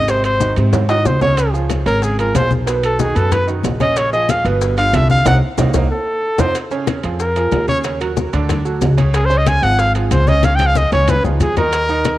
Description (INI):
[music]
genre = Afro-Cuban jazz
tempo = 186 BPM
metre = 4/4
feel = straight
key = unclear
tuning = A4 = 439 Hz
[part]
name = bright trumpet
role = melody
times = 0.0-12.2 s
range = Eb4 to Ab5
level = -18 LUFS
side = equal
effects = cassette tape
[part]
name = bright upright piano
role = accompaniment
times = 0.0-12.2 s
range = B2 to Eb5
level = -22 LUFS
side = right 5 dB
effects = cassette tape
[part]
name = upright bass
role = bass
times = 0.0-12.2 s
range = G1 to Ab2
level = -17 LUFS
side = equal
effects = none
[part]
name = bongos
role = percussion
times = 0.1-12.2 s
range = none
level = -27 LUFS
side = left 7 dB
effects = none
[part]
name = congas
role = percussion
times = 0.1-12.2 s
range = none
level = -22 LUFS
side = left 4 dB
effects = none
[part]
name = maracas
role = percussion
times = 0.1-12.2 s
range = none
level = -34 LUFS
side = left 7 dB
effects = none
[part]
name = timbales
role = percussion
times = 0.1-12.2 s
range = none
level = -26 LUFS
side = right 7 dB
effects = none
[sound]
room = light reverb, small room reverb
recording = home recording on cassette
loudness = -13 LUFS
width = side -15 dB against mid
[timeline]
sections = 0.0-6.6 A section; 6.6-12.2 A section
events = trumpet solo 0.0-12.2; drum fill 0.7-1.4, 5.6-6.6, 10.4-11.7; band accent 5.3-6.6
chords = 0.1 Ab7; 1.4 Db; 2.7 Badd9; 4.0 Bbm7; 4.6 G7; 5.3 Cm7; 5.9 F7; 6.6 Bbm7; 7.8 Ebm7; 8.5 D; 9.1 Db; 10.4 Dbadd9